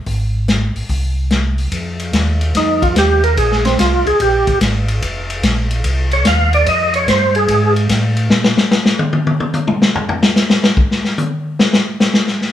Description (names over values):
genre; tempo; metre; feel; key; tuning
soul jazz organ trio; 146 BPM; 4/4; swing 67% on 8ths; F minor; A4 = 443 Hz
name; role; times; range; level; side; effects
mellow tonewheel organ; bass; 0.1-8.6 s; F1 to Bb2; -17 LUFS; equal; slow rotary speaker
vintage drum kit; drums; 0.1-12.5 s; hi-hat, kick drum, ride cymbal, snare drum, toms; -15 LUFS; left 2 dB; none
percussive tonewheel organ; melody; 2.6-7.7 s; C4 to F5; -14 LUFS; right 2 dB; slow rotary speaker, overdrive, chorus vibrato
room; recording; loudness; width
moderate studio reverb, RT60 0.7 s; band playing live in one room; -12 LUFS; side -11 dB against mid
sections
0.0-1.7 A section; 1.7-12.5 B section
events
tonewheel organ solo 1.7-12.5; drum solo 8.3-12.5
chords
0.0 Fm (rootless); 1.7 Ebadd9; 3.4 Abmaj13; 5.0 Fm7; 8.3 N.C.